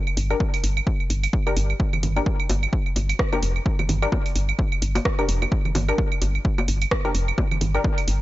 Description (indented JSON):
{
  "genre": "minimal techno",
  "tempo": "129 BPM",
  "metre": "4/4",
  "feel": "swing 58% on 16ths",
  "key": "G minor",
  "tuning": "A4 = 441 Hz",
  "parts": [
    { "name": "claves, congas and bongos", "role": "percussion", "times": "0.1-8.1 s", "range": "none", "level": "-28 LUFS", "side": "right 4 dB", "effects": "dub echo" },
    { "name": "woody FM bass", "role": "bass", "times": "0.2-8.2 s", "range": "F1 to G1", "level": "-23 LUFS", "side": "equal", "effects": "sidechain pumping" },
    { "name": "punchy analog drum machine", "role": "drums", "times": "0.2-8.2 s", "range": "hi-hat, rim click", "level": "-29 LUFS", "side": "right 1 dB", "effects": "overdrive" },
    { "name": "filtered dub chord stab", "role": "stabs", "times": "0.3-7.8 s", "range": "D4 to Bb4", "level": "-29 LUFS", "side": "left 3 dB", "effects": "chorus, dub echo" },
    { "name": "electronic kick drum", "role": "drums", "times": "0.4-8.0 s", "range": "none", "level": "-23 LUFS", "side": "equal", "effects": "overdrive" }
  ],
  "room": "little or no reverb",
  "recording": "nothing above 7.7 kHz",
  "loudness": "-20 LUFS",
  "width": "side -16 dB against mid",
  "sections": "0.0-8.2 A section",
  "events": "none",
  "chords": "0.0 Gm"
}